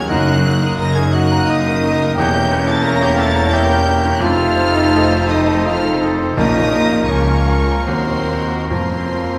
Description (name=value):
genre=classical, romantic movement for piano and orchestra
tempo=66-90 BPM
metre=3/4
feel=rubato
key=Bb minor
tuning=A4 = 440 Hz
part: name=clear grand piano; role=melody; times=0.0-9.4 s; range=Bb1 to Bb5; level=-23 LUFS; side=equal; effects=none
part: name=warm symphonic violin section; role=melody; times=0.0-9.4 s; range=C6 to Bb6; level=-27 LUFS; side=equal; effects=none
part: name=clear studio violin section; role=second line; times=0.0-9.4 s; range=F4 to Eb5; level=-32 LUFS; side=equal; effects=none
part: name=mellow hollow concert flute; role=second line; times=0.0-9.4 s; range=C5 to Bb5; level=-26 LUFS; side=equal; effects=none
part: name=warm clarinet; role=second line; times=0.0-9.4 s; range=C4 to Bb4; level=-26 LUFS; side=equal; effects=none
part: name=rich symphonic viola section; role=accompaniment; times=0.0-9.4 s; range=A3 to E4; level=-28 LUFS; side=equal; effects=none
part: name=warm French horn section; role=sustained chords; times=0.0-9.4 s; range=A3 to Gb4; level=-25 LUFS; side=equal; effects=none
part: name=warm oboe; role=second line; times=0.1-9.4 s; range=A4 to Bb4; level=-28 LUFS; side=equal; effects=none
part: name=mellow bassoon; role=accompaniment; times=0.1-9.4 s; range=F3 to Eb4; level=-28 LUFS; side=equal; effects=none
part: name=rich symphonic cello section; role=bass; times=0.1-9.4 s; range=Db2 to Bb2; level=-26 LUFS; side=equal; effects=none
part: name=rich symphonic double bass section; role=bass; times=0.1-9.4 s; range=E1 to Eb2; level=-23 LUFS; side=equal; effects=none
part: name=timpani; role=percussion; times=6.4-9.4 s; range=F2 to Bb2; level=-28 LUFS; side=equal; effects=none
room=wet recital hall reverb, RT60 1.5 s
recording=heard from further back in the room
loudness=-16 LUFS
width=mono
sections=0.0-9.4 A section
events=none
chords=0.1 Ebm/Gb; 2.2 Edim7; 4.2 F7; 6.4 Bbm; 7.9 Ebm; 8.7 Bbm/F